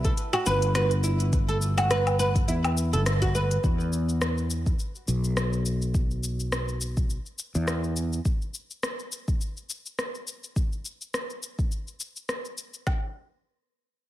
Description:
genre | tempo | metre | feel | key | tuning
organic downtempo | 104 BPM | 4/4 | swing 56% on 16ths | E minor | A4 = 439 Hz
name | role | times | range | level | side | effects
oud | arpeggios | 0.0-3.6 s | E4 to B4 | -27 LUFS | right 1 dB | tape echo
fretless electric bass | bass | 0.0-8.2 s | G1 to E2 | -26 LUFS | equal | lush chorus, sidechain pumping
organic electronic drum kit | drums | 0.0-13.0 s | kick drum, snare drum | -26 LUFS | equal | none
organic electronic drum kit | drums | 0.0-12.8 s | hi-hat, rim click, shaker, woodblock | -32 LUFS | left 1 dB | none
room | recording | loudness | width
little or no reverb | none | -25 LUFS | side -14 dB against mid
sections
0.0-3.6 A section; 3.6-12.9 B section; 12.9-14.1 C section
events
band accent 3.1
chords
0.0 Cmaj7 (rootless); 3.6 E5; 8.3 N.C.

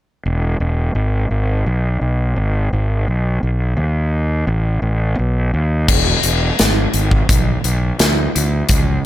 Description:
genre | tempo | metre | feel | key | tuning
blues rock power trio and southern rock | 85 BPM | 4/4 | straight | E major | A4 = 438 Hz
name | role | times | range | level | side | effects
fuzz fingered electric bass | bass | 0.3-9.0 s | E1 to D#2 | -16 LUFS | equal | overdrive
big rock drum kit | drums | 5.9-8.9 s | crash cymbal, hi-hat, kick drum, snare drum | -15 LUFS | equal | none
room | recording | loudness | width
little or no reverb | none | -15 LUFS | side -14 dB against mid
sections
0.2-5.9 A section; 5.9-9.1 B section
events
none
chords
none

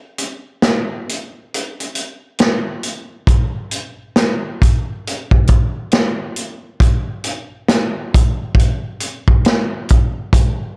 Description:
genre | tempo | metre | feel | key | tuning
hip hop | 68 BPM | 4/4 | swing 65% on 16ths | none | none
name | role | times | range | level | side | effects
vintage drum kit | drums | 0.2-10.6 s | hi-hat, kick drum, snare drum | -14 LUFS | equal | none
room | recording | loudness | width
little or no reverb | cassette tape | -15 LUFS | side -33 dB against mid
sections
0.0-10.8 A section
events
break 0.0-3.3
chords
none

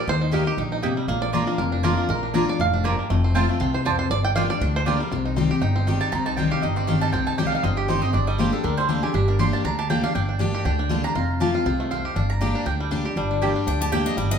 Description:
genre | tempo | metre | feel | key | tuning
bluegrass | 238 BPM | 4/4 | swing 55% on 8ths | G minor | A4 = 440 Hz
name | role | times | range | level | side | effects
bluegrass banjo | melody | 0.0-14.4 s | D3 to G5 | -28 LUFS | right 3 dB | none
picked steel-string acoustic guitar | accompaniment | 0.0-14.4 s | F2 to G4 | -24 LUFS | left 2 dB | none
upright bass | bass | 0.1-14.4 s | F1 to Eb2 | -26 LUFS | equal | none
mandolin | stabs | 0.3-14.0 s | Bb3 to C6 | -28 LUFS | right 4 dB | none
lap resonator guitar | second line | 13.2-14.4 s | D4 | -29 LUFS | left 9 dB | none
picked steel-string acoustic guitar | melody | 13.7-14.4 s | D5 to A5 | -27 LUFS | left 4 dB | none
room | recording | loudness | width
wet large studio reverb, RT60 1.2 s | heard from further back in the room | -20 LUFS | side -7 dB against mid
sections
0.0-5.1 A section; 5.1-13.2 A section; 13.2-14.4 B section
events
five-string banjo solo 0.0-5.1; mandolin solo 5.1-13.2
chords
0.0 Eb; 1.1 Bb; 3.1 F; 4.1 Gm7; 5.1 Cm; 8.1 Gm; 11.2 F; 12.2 Gm

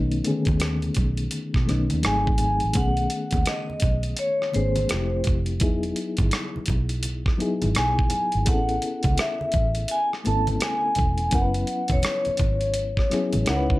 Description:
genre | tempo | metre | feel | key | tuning
R&B, neo-soul | 84 BPM | 4/4 | swing 63% on 16ths | unclear | A4 = 440 Hz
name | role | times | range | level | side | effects
mellow reed electric piano | accompaniment | 0.0-13.8 s | D3 to B4 | -28 LUFS | left 2 dB | fast tremolo
vintage muted fingered electric bass | bass | 0.0-13.8 s | E1 to B2 | -25 LUFS | right 1 dB | none
dusty soul sampler-style drum kit | drums | 0.1-13.8 s | hi-hat, kick drum, rim click | -25 LUFS | equal | none
congas | percussion | 0.3-13.7 s | none | -36 LUFS | right 2 dB | none
vibraphone with medium mallets | melody | 2.1-13.8 s | B#4 to A5 | -26 LUFS | equal | slapback echo, plate reverb
room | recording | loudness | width
light reverb | none | -21 LUFS | side -18 dB against mid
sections
0.0-2.7 A section; 2.7-13.8 B section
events
none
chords
0.0 B9; 2.0 G#7b9; 2.7 B13; 4.9 Fmaj9; 5.6 Emaj9; 8.5 Amaj9; 11.3 F#7sus4

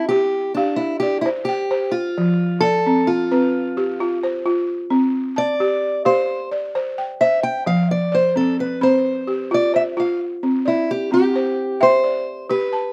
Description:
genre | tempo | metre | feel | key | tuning
west african traditional | 87 BPM (dotted quarters) | 12/8 | straight | C major | A4 = 440 Hz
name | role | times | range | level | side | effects
fingerpicked steel-string acoustic guitar | melody | 0.0-12.9 s | D4 to G5 | -21 LUFS | equal | slapback echo
balafon | arpeggios | 0.0-12.9 s | F3 to B5 | -23 LUFS | equal | none
room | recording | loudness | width
little or no reverb | recorded outdoors, with no room sound | -19 LUFS | mono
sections
0.0-10.4 A section; 10.4-12.9 B section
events
steel-string acoustic guitar solo 0.0-10.4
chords
0.0 C5; 2.2 F5; 4.9 C5; 7.7 F5; 10.4 C

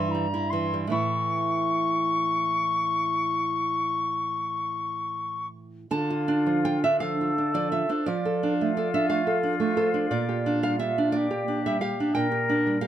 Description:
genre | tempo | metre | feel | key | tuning
romantic duo for flute and classical guitar | 46-61 BPM (dotted quarters) | 12/8 | rubato | D minor | A4 = 444 Hz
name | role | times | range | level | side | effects
silver concert flute | melody | 0.0-12.9 s | F4 to C#6 | -27 LUFS | left 3 dB | none
nylon-string guitar | accompaniment | 0.0-12.9 s | G2 to A5 | -25 LUFS | right 2 dB | none
room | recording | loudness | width
light reverb | none | -23 LUFS | side -11 dB against mid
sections
0.0-5.9 A section; 5.9-12.9 B section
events
none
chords
0.0 Gm6; 0.9 A; 5.9 Dm; 8.1 Dm/F; 10.1 Gm/Bb

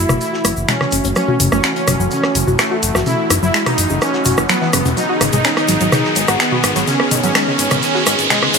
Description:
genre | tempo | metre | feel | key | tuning
melodic techno | 126 BPM | 4/4 | straight | F# dorian | A4 = 440 Hz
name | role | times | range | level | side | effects
soft supersaw | melody | 0.0-8.6 s | G#3 to E4 | -19 LUFS | equal | digital delay
warm analog pad | sustained chords | 0.0-8.6 s | D#3 to G#4 | -24 LUFS | right 1 dB | chorus
fat analog bass | bass | 0.0-8.6 s | E1 to G#1 | -22 LUFS | equal | none
riser | sound effects | 0.0-8.6 s | none | -22 LUFS | right 1 dB | none
tight sequenced synth | arpeggios | 0.1-8.6 s | C#3 to F#4 | -21 LUFS | left 1 dB | chorus, dub echo
house drum kit | drums | 0.1-8.6 s | finger snaps, hi-hat, rim click, toms | -18 LUFS | equal | none
tube shaker | percussion | 0.1-8.6 s | none | -24 LUFS | left 6 dB | none
warm soul drum kit | drums | 0.2-8.6 s | hi-hat, shaker, snare drum | -29 LUFS | equal | none
room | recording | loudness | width
moderate lush hall reverb, RT60 2.1 s | high-pass filter | -13 LUFS | side -5 dB against mid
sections
0.0-8.6 A section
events
build-up 0.0-8.6; riser 0.0-8.6; filter sweep on synth arpeggio sound 0.0-8.6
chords
0.0 F#m7; 5.0 G#m

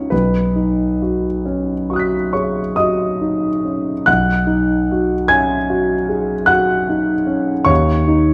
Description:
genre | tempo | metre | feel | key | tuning
classical, impressionist solo piano | 45-51 BPM (dotted quarters) | 9/8 | rubato | B major | A4 = 440 Hz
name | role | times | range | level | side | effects
warm concert grand piano | solo | 0.0-8.3 s | B1 to B6 | -17 LUFS | equal | none
room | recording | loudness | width
moderate scoring stage reverb, RT60 1.6 s | dark, warm production | -17 LUFS | mono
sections
0.0-4.1 A section; 4.1-8.3 A section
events
none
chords
0.1 Badd9; 7.7 D#7(no3)

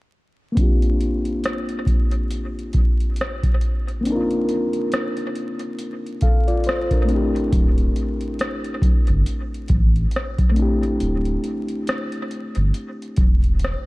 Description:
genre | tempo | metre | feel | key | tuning
lo-fi hip hop | 69 BPM | 4/4 | swing 57% on 16ths | unclear | A4 = 438 Hz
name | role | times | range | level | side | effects
mellow reed electric piano | accompaniment | 0.5-13.9 s | A3 to F5 | -24 LUFS | left 1 dB | low-pass filter, dub echo
booming analog drum machine | drums | 0.6-13.9 s | hi-hat, kick drum, rim click | -20 LUFS | equal | none
warm sub bass | bass | 7.5-13.7 s | D1 to A1 | -21 LUFS | equal | none
room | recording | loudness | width
little or no reverb | echo-heavy mix, vinyl crackle | -18 LUFS | side -21 dB against mid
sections
0.6-13.9 A section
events
filter sweep on reed electric piano 0.6-13.9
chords
0.6 C9sus4; 7.1 D9sus4

